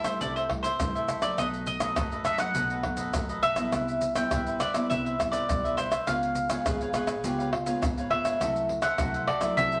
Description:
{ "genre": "samba and choro", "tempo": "102 BPM", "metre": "4/4", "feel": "straight", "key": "unclear", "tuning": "A4 = 440 Hz", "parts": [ { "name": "mandolin", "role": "melody", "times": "0.0-9.8 s", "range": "C5 to G5", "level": "-31 LUFS", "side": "equal", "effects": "none" }, { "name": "cavaquinho", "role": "accompaniment", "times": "0.0-9.8 s", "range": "D#4 to E#5", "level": "-37 LUFS", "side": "equal", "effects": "none" }, { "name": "nylon-string guitar", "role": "accompaniment", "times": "0.0-9.8 s", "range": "F#2 to E#4", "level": "-36 LUFS", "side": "equal", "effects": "none" }, { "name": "woody fretless electric bass", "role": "bass", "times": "0.0-9.8 s", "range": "G#1 to G2", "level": "-43 LUFS", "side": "equal", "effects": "none" }, { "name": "maracas, pandeiro, tamborim and surdo", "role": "percussion", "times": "0.0-9.8 s", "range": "none", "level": "-34 LUFS", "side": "equal", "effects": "none" }, { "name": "breathy trombone", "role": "second line", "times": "6.7-8.0 s", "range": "E#4 to G#4", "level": "-36 LUFS", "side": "equal", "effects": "none" } ], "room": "wet studio reverb, RT60 0.7 s", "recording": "vinyl crackle", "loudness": "-28 LUFS", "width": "mono", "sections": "0.0-9.8 A section", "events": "none", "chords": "0.0 C6; 1.4 B7; 3.7 Cmaj7; 6.1 C#7; 8.4 F#m7b5/C" }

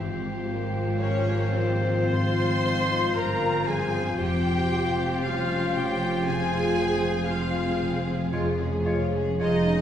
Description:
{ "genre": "classical, slow romantic movement for symphony orchestra", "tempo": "51-60 BPM", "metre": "4/4", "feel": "rubato", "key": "F minor", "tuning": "A4 = 438 Hz", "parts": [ { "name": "clear oboe", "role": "second line", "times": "0.0-9.6 s", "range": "C5 to Db5", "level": "-36 LUFS", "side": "left 1 dB", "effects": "none" }, { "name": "warm clarinet", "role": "second line", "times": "0.0-9.6 s", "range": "F4", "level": "-34 LUFS", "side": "left 3 dB", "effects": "none" }, { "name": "warm symphonic violin section", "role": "second line", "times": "0.0-9.8 s", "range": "Bb3 to Ab4", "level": "-33 LUFS", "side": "left 2 dB", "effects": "none" }, { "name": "mellow bassoon", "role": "accompaniment", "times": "0.0-9.6 s", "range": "F3 to Ab3", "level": "-34 LUFS", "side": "equal", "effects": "none" }, { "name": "mellow French horn section", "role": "sustained chords", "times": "0.0-9.8 s", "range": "F3 to Ab4", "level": "-33 LUFS", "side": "left 2 dB", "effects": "none" }, { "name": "concert harp", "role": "arpeggios", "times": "0.0-9.8 s", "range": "F2 to Db5", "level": "-34 LUFS", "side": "left 4 dB", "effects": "none" }, { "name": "rich symphonic cello section", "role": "bass", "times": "0.0-9.8 s", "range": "F2 to Ab2", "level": "-31 LUFS", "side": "right 2 dB", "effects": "none" }, { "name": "warm symphonic double bass section", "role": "bass", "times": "0.0-9.8 s", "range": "F1 to Ab1", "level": "-30 LUFS", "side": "right 2 dB", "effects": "none" }, { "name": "warm symphonic violin section", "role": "melody", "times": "1.0-9.8 s", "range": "C5 to C6", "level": "-32 LUFS", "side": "left 2 dB", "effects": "none" }, { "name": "mellow silver concert flute", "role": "second line", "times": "1.0-9.8 s", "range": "C5 to C6", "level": "-35 LUFS", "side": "left 1 dB", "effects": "none" }, { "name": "rich symphonic viola section", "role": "accompaniment", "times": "1.0-9.8 s", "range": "C4 to C5", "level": "-32 LUFS", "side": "equal", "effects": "none" } ], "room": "wet recital hall reverb, RT60 1.6 s", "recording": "heard from further back in the room", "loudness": "-23 LUFS", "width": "side -9 dB against mid", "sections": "0.0-9.8 A section", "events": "none", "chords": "0.0 Fm/Ab; 4.2 Fm; 8.3 Db/F" }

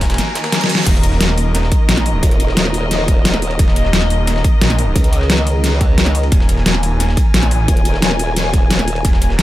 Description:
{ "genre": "dark technical drum and bass", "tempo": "176 BPM", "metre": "4/4", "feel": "straight", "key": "unclear", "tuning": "A4 = 441 Hz", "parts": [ { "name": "muted studio string section", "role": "sustained chords", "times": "0.0-9.4 s", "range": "Eb3 to Ab5", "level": "-22 LUFS", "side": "left 2 dB", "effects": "sidechain pumping" }, { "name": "snarling distorted saw bass", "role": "bass", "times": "0.0-9.4 s", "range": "Eb1 to Bb1", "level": "-16 LUFS", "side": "equal", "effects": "distortion, overdrive, sidechain pumping" }, { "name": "breakbeat sampler-style drum kit", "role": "drums", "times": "0.0-9.4 s", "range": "ride cymbal, snare drum", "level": "-29 LUFS", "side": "right 1 dB", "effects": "none" }, { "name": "dubstep drum kit", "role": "drums", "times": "0.0-9.4 s", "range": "crash cymbal, hi-hat, snare drum", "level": "-17 LUFS", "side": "left 1 dB", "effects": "overdrive" }, { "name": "electronic kick drum", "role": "drums", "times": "0.0-9.1 s", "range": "none", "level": "-14 LUFS", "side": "equal", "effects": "overdrive" }, { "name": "reverse cymbal", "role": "sound effects", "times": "0.3-0.9 s", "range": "none", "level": "-25 LUFS", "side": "right 6 dB", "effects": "none" }, { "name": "formant-sweep wobble bass", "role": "bass", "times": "2.2-9.0 s", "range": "Eb1 to Db2", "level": "-17 LUFS", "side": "equal", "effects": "chorus, tube saturation" } ], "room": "little or no reverb", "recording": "none", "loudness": "-12 LUFS", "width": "side -15 dB against mid", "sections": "0.0-9.4 A section", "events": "reverse cymbal 0.3-0.9; drum fill 0.5-0.9", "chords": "0.0 Eb5" }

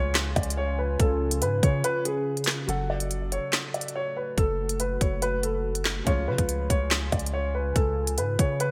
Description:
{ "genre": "hip hop, drill", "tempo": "142 BPM", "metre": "4/4", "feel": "half-time", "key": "F# harmonic minor", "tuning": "A4 = 441 Hz", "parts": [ { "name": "dark concert grand piano", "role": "melody", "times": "0.0-8.7 s", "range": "G#4 to F#5", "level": "-31 LUFS", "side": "equal", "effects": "none" }, { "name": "felt-muted upright piano", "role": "accompaniment", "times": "0.0-8.7 s", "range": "C#3 to C#5", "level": "-42 LUFS", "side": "equal", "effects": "none" }, { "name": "deep dark ambient pad", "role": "sustained chords", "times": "0.0-8.7 s", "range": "C#3 to G#5", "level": "-38 LUFS", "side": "equal", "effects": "chorus, built-in reverb" }, { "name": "long sustained 808-style bass", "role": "bass", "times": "0.0-8.7 s", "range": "F#1 to C#3", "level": "-31 LUFS", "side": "equal", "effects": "none" }, { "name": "drill drum kit", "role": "drums", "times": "0.1-8.7 s", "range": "handclaps, hi-hat, kick drum, rim click, snare drum", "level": "-28 LUFS", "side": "equal", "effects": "gated reverb" } ], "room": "light reverb", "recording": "bright 1980s-style digital production", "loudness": "-26 LUFS", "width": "mono", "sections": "0.0-2.7 A section; 2.7-8.7 B section", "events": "break 1.8-2.7", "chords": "0.0 C#; 2.7 F#m; 6.1 C#" }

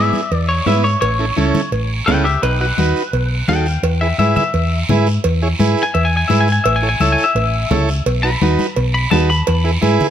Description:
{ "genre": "latin, cumbia", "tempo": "170 BPM", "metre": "4/4", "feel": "straight", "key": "E major", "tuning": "A4 = 441 Hz", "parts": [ { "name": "semi-hollow electric guitar", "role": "melody", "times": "0.0-10.0 s", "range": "D#4 to B5", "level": "-19 LUFS", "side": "left 3 dB", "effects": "spring reverb" }, { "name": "combo organ", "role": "accompaniment", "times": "0.0-10.1 s", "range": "B3 to C#5", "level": "-20 LUFS", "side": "right 4 dB", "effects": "none" }, { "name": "hollow-body short-scale fingered electric bass", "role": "bass", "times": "0.0-10.0 s", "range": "A1 to G#2", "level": "-17 LUFS", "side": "equal", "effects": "none" }, { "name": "congas", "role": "percussion", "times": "0.1-10.1 s", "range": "none", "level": "-21 LUFS", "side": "left 4 dB", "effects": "none" }, { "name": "guiro", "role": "percussion", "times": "0.1-10.1 s", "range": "none", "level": "-28 LUFS", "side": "right 4 dB", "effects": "none" }, { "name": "cowbell and timbales", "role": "percussion", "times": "0.3-9.6 s", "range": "none", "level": "-23 LUFS", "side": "right 4 dB", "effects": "none" } ], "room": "light reverb", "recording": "close, detailed microphones", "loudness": "-13 LUFS", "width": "side -10 dB against mid", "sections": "0.0-10.1 A section", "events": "clean electric guitar solo 0.0-10.1", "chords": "0.0 E; 1.0 A; 2.4 B7; 3.8 E; 6.7 A; 8.1 B; 9.5 E" }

